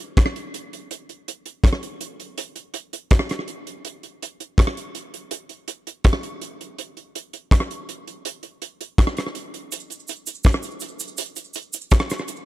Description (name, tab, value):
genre	reggae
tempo	82 BPM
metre	4/4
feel	straight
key	none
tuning	none
part	damped 70s drum kit	drums	0.0-12.5 s	hi-hat, kick drum, rim click	-20 LUFS	equal	slapback echo
part	cabasa	percussion	9.7-12.5 s	none	-32 LUFS	right 7 dB	slapback echo
room	studio reverb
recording	dry, close 1970s-style studio recording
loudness	-21 LUFS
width	side -15 dB against mid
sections	0.0-12.5 A section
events	none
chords	none